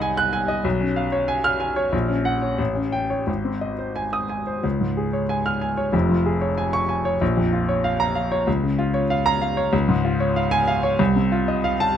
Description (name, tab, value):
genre	classical, virtuoso piano study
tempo	94 BPM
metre	2/4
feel	rubato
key	Db major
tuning	A4 = 440 Hz
part	warm grand piano	solo	0.0-12.0 s	F1 to Gb6	-19 LUFS	equal	none
room	light reverb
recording	close, detailed microphones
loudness	-19 LUFS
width	side -9 dB against mid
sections	0.0-4.6 A section; 4.6-12.0 B section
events	none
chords	0.0 Ab7/C; 0.6 Db7/Cb; 1.9 Gb/Bb; 2.6 A7; 3.3 Ab; 4.6 Db; 5.9 Db/F; 7.2 Bbm; 8.5 Bbm/Db; 9.7 Db; 11.0 F7/C